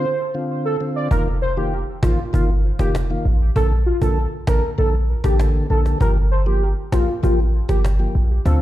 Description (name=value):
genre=dancehall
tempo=98 BPM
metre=4/4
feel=straight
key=G minor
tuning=A4 = 440 Hz
part: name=warm velvety synth lead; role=melody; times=0.0-8.6 s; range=F4 to D5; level=-24 LUFS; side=equal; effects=chorus, tape echo
part: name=mellow tonewheel organ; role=accompaniment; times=0.0-8.6 s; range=D3 to A4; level=-26 LUFS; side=left 2 dB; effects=slow rotary speaker
part: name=warm 808-style bass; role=bass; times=1.1-8.6 s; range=F1 to D2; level=-18 LUFS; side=equal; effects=none
part: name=cajon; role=drums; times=1.1-8.6 s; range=none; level=-26 LUFS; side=equal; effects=none
room=digital ambience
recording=played on a big sound system in a bare room, large studio reverb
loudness=-17 LUFS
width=side -14 dB against mid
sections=0.0-8.6 A section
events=none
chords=0.0 Dm7; 1.1 F7sus4; 3.6 Bbmaj7; 6.0 Gm7